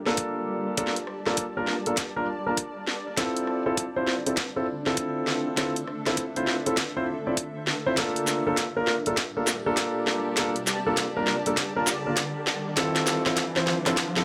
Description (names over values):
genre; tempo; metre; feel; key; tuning
glitch hop; 100 BPM; 4/4; swing 64% on 16ths; G dorian; A4 = 441 Hz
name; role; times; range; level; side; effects
granular cloud pad; texture; 0.0-14.2 s; D4 to A5; -37 LUFS; equal; built-in reverb, sidechain pumping
dark concert grand piano; stabs; 0.1-14.2 s; Bb3 to D5; -29 LUFS; equal; vintage 12-bit sampler grit, sidechain pumping, low-pass filter, digital delay
drum and bass drum kit; drums; 0.1-14.2 s; hi-hat, rim click, shaker, snare drum; -30 LUFS; equal; high-pass filter on hats, high-pass filter on snare, high-pass filter on perc, high-pass filter on room
electronic kick drum; drums; 0.2-14.1 s; none; -35 LUFS; equal; high-pass filter on kick, high-pass filter on room
riser; sound effects; 9.4-14.2 s; none; -37 LUFS; equal; none
room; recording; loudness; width
light reverb, digital ambience; none; -27 LUFS; mono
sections
0.0-14.2 A section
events
build-up 0.0-14.2; drum fill 0.0-14.2; riser 9.4-14.2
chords
0.0 Gm7; 3.2 Dm7; 8.0 Gm7; 12.8 Dm7